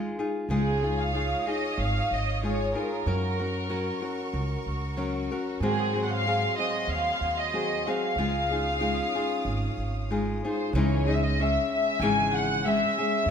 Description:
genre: mexican folk, mariachi.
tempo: 94 BPM.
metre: 4/4.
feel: straight.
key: Db major.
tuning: A4 = 440 Hz.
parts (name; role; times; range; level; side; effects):
nylon-string guitar; accompaniment; 0.0-13.3 s; Ab2 to Bb4; -29 LUFS; left 2 dB; none.
upright bass; bass; 0.0-13.3 s; Ab1 to Ab2; -30 LUFS; right 1 dB; none.
dark studio violin section; melody; 0.5-13.3 s; Ab4 to G#5; -28 LUFS; equal; none.
clear studio violin section; sustained chords; 0.5-10.7 s; Db4 to Eb6; -38 LUFS; right 1 dB; none.
room: moderate recital hall reverb, RT60 1.4 s.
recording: none.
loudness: -25 LUFS.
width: side -7 dB against mid.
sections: 0.5-10.7 A section; 10.7-13.3 B section.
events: none.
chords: 0.5 Dbadd9; 3.1 Gb; 5.6 Ab7; 8.2 Dbadd9; 10.7 C#madd9.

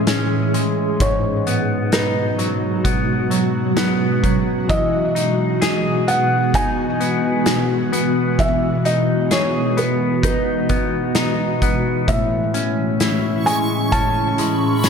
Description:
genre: dream pop.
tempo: 65 BPM.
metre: 4/4.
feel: straight.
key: E major.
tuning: A4 = 440 Hz.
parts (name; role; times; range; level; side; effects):
felt-muted upright piano; melody; 0.0-14.9 s; B4 to A5; -23 LUFS; right 1 dB; ping-pong delay.
ethereal airy pad; sustained chords; 0.0-14.9 s; A2 to G#4; -20 LUFS; right 1 dB; ensemble chorus, built-in reverb, tremolo.
clean electric guitar; arpeggios; 0.0-14.9 s; G#2 to G#4; -22 LUFS; left 2 dB; wide subtle chorus, ping-pong delay.
loose indie drum kit; drums; 0.1-14.9 s; hi-hat, kick drum, snare drum; -23 LUFS; equal; none.
backwards swelling texture; texture; 13.1-14.9 s; B5 to C#6; -27 LUFS; right 2 dB; built-in reverb, ping-pong delay.
room: moderate lush hall reverb, RT60 2.6 s.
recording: none.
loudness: -16 LUFS.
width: side -6 dB against mid.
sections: 0.0-14.9 A section.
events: none.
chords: 0.0 Amaj7; 1.0 G#m7; 4.7 Emaj9; 12.1 Amaj7.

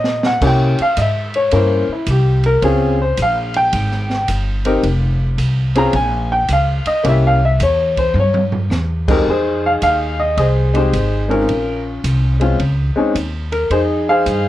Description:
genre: jazz piano trio.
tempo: 108 BPM.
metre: 4/4.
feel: swing 67% on 8ths.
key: F minor.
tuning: A4 = 436 Hz.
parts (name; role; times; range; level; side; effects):
clear upright piano; melody; 0.0-14.5 s; F2 to Bb5; -16 LUFS; left 1 dB; none.
upright bass; bass; 0.0-14.5 s; F1 to C3; -17 LUFS; equal; none.
open jazz drum kit; drums; 0.0-14.4 s; crash cymbal, hi-hat, kick drum, ride cymbal, snare drum, toms; -25 LUFS; right 2 dB; none.
room: light reverb.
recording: worn, warbling old tape, cassette tape, warbly pitch drift.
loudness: -14 LUFS.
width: side -14 dB against mid.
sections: 0.0-9.3 A section; 9.3-14.5 B section.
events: drum fill 0.0-0.4, 8.2-8.7; upright piano solo 0.0-9.3.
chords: 0.4 C7b9; 2.6 Bbm7; 4.8 F5; 5.9 Bbm; 7.0 C7b9; 9.3 Fm7; 11.5 Bbm; 13.7 Fm7.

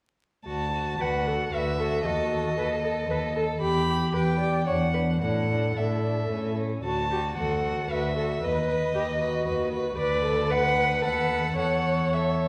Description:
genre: quick classical-period movement for string quartet.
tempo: 113 BPM.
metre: 3/4.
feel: rubato.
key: D major.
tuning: A4 = 440 Hz.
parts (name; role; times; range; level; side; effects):
rich violin; melody; 0.5-12.5 s; D5 to B5; -32 LUFS; equal; none.
rich violin; second line; 0.5-12.5 s; C#4 to B4; -34 LUFS; equal; none.
warm cello; bass; 0.5-12.5 s; D2 to A2; -31 LUFS; equal; none.
warm viola; accompaniment; 1.0-12.5 s; F#4 to D5; -32 LUFS; equal; none.
room: wet recital hall reverb, RT60 1.5 s.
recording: recorded in a church or concert hall, vinyl crackle.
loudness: -26 LUFS.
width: mono.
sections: 0.5-12.5 A section.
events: none.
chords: 0.5 D; 2.1 D#dim; 3.6 Em; 4.7 E5; 5.2 Asus4; 6.8 D; 8.4 B/D#; 10.0 Bm/D; 11.0 B7/D#; 11.6 A/E.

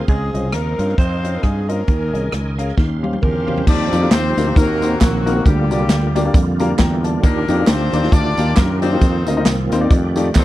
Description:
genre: uptempo gospel.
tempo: 135 BPM.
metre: 4/4.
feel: swing 58% on 8ths.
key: unclear.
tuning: A4 = 441 Hz.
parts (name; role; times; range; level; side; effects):
bright tonewheel organ; sustained chords; 0.0-10.4 s; D3 to C6; -24 LUFS; right 3 dB; slow rotary speaker, chorus vibrato.
growling alto saxophone; melody; 0.1-3.6 s; Ab4 to C5; -25 LUFS; right 2 dB; none.
warm horn section; melody; 0.1-10.4 s; Gb3 to D5; -24 LUFS; left 3 dB; none.
warm upright piano; accompaniment; 0.1-10.3 s; Db3 to Bb5; -22 LUFS; left 4 dB; none.
fretless electric bass; bass; 0.1-10.4 s; Bb1 to G2; -20 LUFS; equal; none.
swinging big-band drum kit; drums; 0.1-10.4 s; crash cymbal, hi-hat, kick drum, rim click, snare drum, toms; -17 LUFS; equal; none.
tambourine and handclaps; percussion; 3.7-10.4 s; none; -30 LUFS; right 7 dB; none.
room: little or no reverb.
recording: dry, close 1970s-style studio recording, tape saturation.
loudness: -14 LUFS.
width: side -15 dB against mid.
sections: 0.0-3.7 A section; 3.7-10.4 B section.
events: drum fill 2.8-3.7; upright piano fill 6.3-7.2.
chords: 0.1 Dbmaj9; 1.9 Eb7sus4; 2.8 Eb13; 3.7 Eb69; 4.6 Ebm6; 5.5 Bb6; 7.2 Ebmaj9; 9.0 F7sus4; 9.9 F13.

